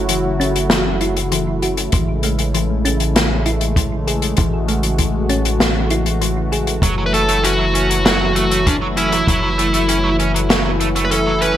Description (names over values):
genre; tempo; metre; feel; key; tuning
synthwave; 98 BPM; 4/4; straight; F# minor; A4 = 440 Hz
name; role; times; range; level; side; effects
brassy analog pad; sustained chords; 0.0-11.6 s; C#3 to F#4; -21 LUFS; equal; chorus, sidechain pumping
tight sequencer bass; bass; 0.0-11.6 s; F#1 to A1; -21 LUFS; equal; sidechain pumping
thumb-piano-like synth pluck; arpeggios; 0.1-6.7 s; E3 to G#4; -24 LUFS; left 2 dB; chorus, digital delay
open jazz drum kit; drums; 0.1-11.5 s; hi-hat, snare drum; -19 LUFS; left 1 dB; gated reverb
kick drum; drums; 1.9-9.4 s; none; -19 LUFS; equal; none
biting overdriven guitar; riff; 6.8-11.5 s; F#3 to C#4; -22 LUFS; right 4 dB; wide subtle chorus, digital delay
dark smooth lead guitar; melody; 7.1-11.6 s; D4 to B4; -18 LUFS; equal; overdrive, digital delay
room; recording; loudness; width
moderate plate reverb, RT60 2.0 s, small room reverb; bright 1980s-style digital production; -14 LUFS; side -11 dB against mid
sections
0.0-11.6 A section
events
none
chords
0.0 F#m7; 1.9 Amaj7; 6.8 F#m7